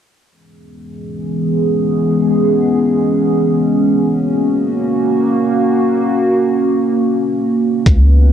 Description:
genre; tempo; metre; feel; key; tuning
hip hop, atmospheric cloud-rap; free time; none; none; C# dorian; A4 = 440 Hz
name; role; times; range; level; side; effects
dark analog pad; sustained chords; 1.0-8.3 s; E3 to B4; -13 LUFS; equal; chorus, phaser, sidechain pumping, low-pass filter
warm 808-style bass; bass; 7.9-8.3 s; C#2; -8 LUFS; equal; none
lo-fi sampler-style drum kit; drums; 7.9-8.0 s; hi-hat, kick drum; -12 LUFS; equal; vintage 12-bit sampler grit
room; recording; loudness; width
light reverb, digital ambience; dark, warm production; -12 LUFS; side -9 dB against mid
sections
0.3-7.9 A section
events
filter sweep on analog synth pad 0.3-7.9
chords
0.3 C#m7; 4.1 F#

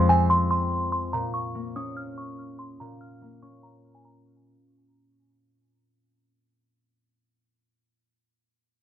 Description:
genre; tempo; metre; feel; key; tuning
hip hop; 144 BPM; 4/4; half-time; unclear; A4 = 440 Hz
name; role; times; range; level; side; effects
delicate synth tine bell; melody; 0.0-4.2 s; Ab5 to F6; -26 LUFS; right 1 dB; chorus, low-pass filter
concert harp; accompaniment; 0.0-6.4 s; F2 to Db4; -26 LUFS; left 1 dB; low-pass filter
room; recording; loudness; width
light reverb; none; -23 LUFS; side -11 dB against mid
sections
0.0-4.5 A section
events
fade-out 0.0-4.5; filter sweep 0.0-4.5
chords
0.0 Fm; 1.1 Bbm

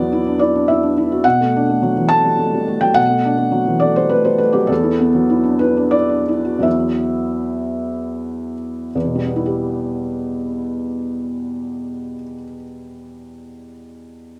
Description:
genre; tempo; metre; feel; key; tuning
neoclassical minimalist piano; 72-107 BPM; 3/4; rubato; E minor; A4 = 439 Hz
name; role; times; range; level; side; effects
felt-muted upright piano; solo; 0.0-14.4 s; E2 to A5; -18 LUFS; equal; none
room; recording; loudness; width
moderate studio reverb, RT60 0.8 s; none; -18 LUFS; mono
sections
0.0-8.9 A section; 8.9-13.7 B section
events
slowing down 3.8-8.9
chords
0.0 Esus2; 1.2 Bm7; 4.7 Esus2; 8.9 Em

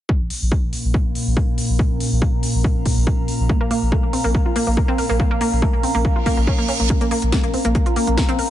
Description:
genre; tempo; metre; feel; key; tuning
driving peak-time techno; 141 BPM; 4/4; straight; Bb minor; A4 = 440 Hz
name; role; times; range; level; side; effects
metallic inharmonic drone; drone; 0.5-6.9 s; Bb2; -27 LUFS; equal; chorus, built-in reverb, sidechain pumping
electronic kick drum; drums; 0.1-8.3 s; none; -19 LUFS; equal; overdrive
warbly tape-like pad; texture; 1.2-8.5 s; Db4 to Bb5; -27 LUFS; equal; chorus, built-in reverb, phaser, sidechain pumping
saturated sub bass; bass; 0.2-8.4 s; Bb1; -22 LUFS; equal; overdrive, sidechain pumping, low-pass filter
techno drum kit; drums; 0.3-8.5 s; hi-hat, snare drum; -28 LUFS; equal; overdrive, sidechain pumping on hats
analog pluck; riff; 3.5-8.4 s; A3 to Bb4; -22 LUFS; right 1 dB; chorus, tube saturation, vintage 12-bit sampler grit, sidechain pumping, ping-pong delay
reverse cymbal; sound effects; 6.2-6.9 s; none; -28 LUFS; right 6 dB; none
room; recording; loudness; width
light reverb, digital ambience; nothing above 11.0 kHz; -16 LUFS; side -12 dB against mid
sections
0.1-6.9 A section; 6.9-8.5 B section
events
reverse cymbal 6.2-6.9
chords
0.1 Bbm

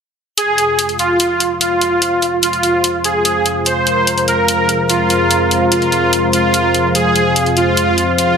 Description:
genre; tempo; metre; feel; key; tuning
heavy wobble dubstep; 146 BPM; 4/4; half-time; F minor; A4 = 440 Hz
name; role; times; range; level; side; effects
soft supersaw; melody; 0.4-8.4 s; F4 to C5; -14 LUFS; right 1 dB; dub echo
lush unison pad; sustained chords; 0.4-8.4 s; F2 to Bb4; -19 LUFS; left 1 dB; chorus
electronic hi-hat; drums; 0.4-8.3 s; none; -17 LUFS; left 2 dB; small room reverb
deep dark ambient pad; texture; 1.4-8.4 s; F4 to F5; -21 LUFS; left 1 dB; chorus, built-in reverb
room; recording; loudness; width
moderate plate reverb, RT60 1.5 s, digital ambience; none; -12 LUFS; side -6 dB against mid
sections
0.4-8.4 A section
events
none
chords
0.4 Fm

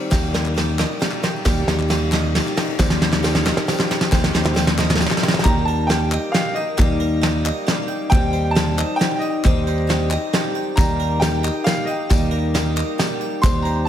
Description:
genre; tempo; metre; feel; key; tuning
indie folk with a building arrangement; 135 BPM; 3/4; straight; unclear; A4 = 439 Hz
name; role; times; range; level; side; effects
fingerpicked acoustic archtop guitar; accompaniment; 0.0-1.5 s; G3 to C4; -35 LUFS; left 1 dB; none
picked twelve-string acoustic guitar; accompaniment; 0.0-13.9 s; Eb3 to G4; -26 LUFS; left 3 dB; slapback echo
harpsichord; arpeggios; 0.1-13.9 s; G4 to G5; -28 LUFS; right 5 dB; slapback echo
fingered electric bass; bass; 0.1-13.9 s; Eb2; -21 LUFS; equal; none
soft brush drum kit; drums; 0.1-13.5 s; hi-hat, kick drum, ride cymbal, snare drum; -20 LUFS; equal; none
group handclap; percussion; 0.1-13.5 s; none; -32 LUFS; left 4 dB; none
tambourine; percussion; 0.1-5.1, 10.8-13.5 s; none; -38 LUFS; left 7 dB; none
clear upright piano; melody; 5.4-13.9 s; Eb5 to C6; -25 LUFS; equal; slapback echo, tape echo
room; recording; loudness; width
moderate lush hall reverb, RT60 1.8 s, small room ambience; big arena sound; -17 LUFS; side -10 dB against mid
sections
0.0-5.5 A section; 5.5-13.9 B section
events
build-up 0.0-5.5; drum fill 0.0-5.5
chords
0.1 Eb; 2.8 Cm/Eb; 5.5 Eb; 8.1 Cm/Eb; 10.8 Eb

